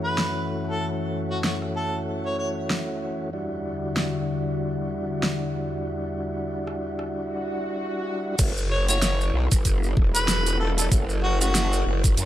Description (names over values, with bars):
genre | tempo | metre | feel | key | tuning
glitch hop | 95 BPM | 4/4 | swing 57% on 16ths | F# phrygian | A4 = 440 Hz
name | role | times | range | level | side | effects
mellow harmonica | melody | 0.0-2.5, 8.7-11.9 s | F#4 to C#5 | -28 LUFS | equal | digital delay
warbly tape-like pad | sustained chords | 0.0-12.3 s | E2 to A4 | -32 LUFS | left 2 dB | chorus, built-in reverb, sidechain pumping
mellow tonewheel organ | stabs | 0.0-11.5 s | G3 to F#4 | -30 LUFS | equal | overdrive, fast rotary speaker, vintage 12-bit sampler grit, sidechain pumping, low-pass filter, digital delay
pop drum kit | drums | 0.2-12.3 s | crash cymbal, hi-hat, rim click, snare drum | -27 LUFS | equal | overdrive
swell | sound effects | 7.3-8.4 s | none | -34 LUFS | left 1 dB | none
growl bass | bass | 8.4-12.3 s | E1 to F#2 | -24 LUFS | equal | chorus, tube saturation
electronic kick drum | drums | 8.4-12.2 s | none | -21 LUFS | equal | overdrive
maracas | percussion | 8.4-12.3 s | none | -29 LUFS | right 3 dB | none
room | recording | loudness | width
light reverb | none | -23 LUFS | side -13 dB against mid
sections
0.0-8.4 A section; 8.4-12.3 B section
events
filter sweep on ambient pad 0.0-8.4; swell 7.3-8.4; drop 8.4-12.3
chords
0.0 F#m7; 3.3 Em9; 8.4 F#m7